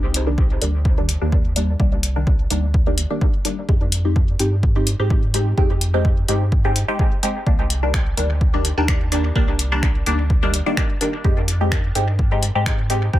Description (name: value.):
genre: dub techno.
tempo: 127 BPM.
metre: 4/4.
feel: swing 54% on 16ths.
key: C minor.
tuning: A4 = 440 Hz.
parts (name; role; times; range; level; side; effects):
filtered dub chord stab; stabs; 0.0-13.2 s; Eb3 to G4; -23 LUFS; left 1 dB; phaser, sidechain pumping, dub echo.
pure sine sub bass; bass; 0.0-13.2 s; C2 to Ab2; -21 LUFS; equal; tube saturation, sidechain pumping.
deep house drum kit; drums; 0.1-13.0 s; finger snaps, hi-hat; -25 LUFS; left 1 dB; none.
electronic kick drum; drums; 0.4-13.2 s; none; -19 LUFS; equal; none.
room: digital ambience.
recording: none.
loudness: -16 LUFS.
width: side -14 dB against mid.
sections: 0.0-13.2 A section.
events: none.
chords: 0.0 Cm9; 3.7 Fm9; 7.5 Cm9; 11.2 Fm9.